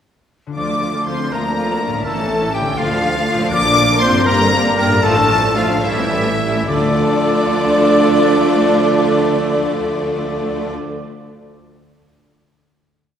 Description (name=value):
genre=classical, dramatic, fast romantic movement for symphony orchestra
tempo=70-83 BPM (dotted quarters)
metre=6/8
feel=rubato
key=D minor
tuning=A4 = 440 Hz
part: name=concert harp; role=arpeggios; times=0.5-11.6 s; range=G2 to A5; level=-26 LUFS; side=left 4 dB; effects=none
part: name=bright symphonic violin section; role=melody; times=0.6-10.7 s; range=D5 to D6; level=-21 LUFS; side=left 2 dB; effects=none
part: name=mellow clarinet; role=second line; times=0.6-10.7 s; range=E4 to D5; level=-26 LUFS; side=right 2 dB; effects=none
part: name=rich symphonic violin section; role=second line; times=0.6-10.7 s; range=A3 to Bb4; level=-26 LUFS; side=left 2 dB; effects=none
part: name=silver concert flute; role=second line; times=0.6-10.7 s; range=A4 to D6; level=-24 LUFS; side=left 2 dB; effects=none
part: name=warm oboe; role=second line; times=0.6-10.7 s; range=E4 to D5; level=-24 LUFS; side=equal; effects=none
part: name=rich symphonic viola section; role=accompaniment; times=0.6-10.7 s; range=D3 to C#4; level=-22 LUFS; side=equal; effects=none
part: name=bright trombone section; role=sustained chords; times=0.6-10.7 s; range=E3 to D4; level=-24 LUFS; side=right 3 dB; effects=none
part: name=warm French horn section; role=sustained chords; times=0.6-10.7 s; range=E3 to D4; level=-23 LUFS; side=equal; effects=none
part: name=rich symphonic cello section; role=bass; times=0.6-10.7 s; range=D2 to Bb2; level=-24 LUFS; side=right 3 dB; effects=none
part: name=warm studio double bass section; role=bass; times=0.6-10.7 s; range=G1 to D2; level=-25 LUFS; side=right 2 dB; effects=none
room=wet concert hall reverb, RT60 2.1 s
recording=recorded in a church or concert hall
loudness=-13 LUFS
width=side -8 dB against mid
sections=0.6-6.7 A section; 6.7-9.9 final chord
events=slowing down 2.8-6.7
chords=0.6 Dm; 2.1 A; 2.8 Dm; 3.5 Bb; 4.3 Gm; 5.0 Dm/A; 5.8 A7; 6.7 Dm